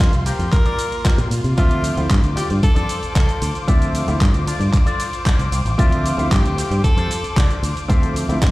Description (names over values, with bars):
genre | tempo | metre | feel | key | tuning
nu-disco, nu disco | 114 BPM | 4/4 | straight | D minor | A4 = 440 Hz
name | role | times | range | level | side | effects
breathy tenor saxophone | melody | 0.0-7.8 s | D4 to Bb4 | -27 LUFS | equal | dub echo
rich symphonic string section | sustained chords | 0.0-8.5 s | Bb3 to D6 | -29 LUFS | left 3 dB | sidechain pumping
electric guitar with an envelope filter | riff | 0.0-8.4 s | D4 to D5 | -30 LUFS | left 3 dB | analog chorus
fingered electric bass with an envelope filter | bass | 0.0-8.5 s | A1 to C3 | -20 LUFS | equal | tube saturation
electronic kick drum | drums | 0.0-8.5 s | none | -15 LUFS | equal | overdrive
pop drum kit | drums | 0.0-8.5 s | handclaps, hi-hat, ride cymbal, shaker | -28 LUFS | right 1 dB | overdrive
clear grand piano | accompaniment | 1.6-8.4 s | F3 to E5 | -25 LUFS | equal | sidechain pumping
room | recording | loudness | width
little or no reverb | played on a big sound system in a bare room, large studio reverb | -16 LUFS | side -19 dB against mid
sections
0.0-8.5 A section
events
none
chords
0.0 C7sus4; 1.6 Dm7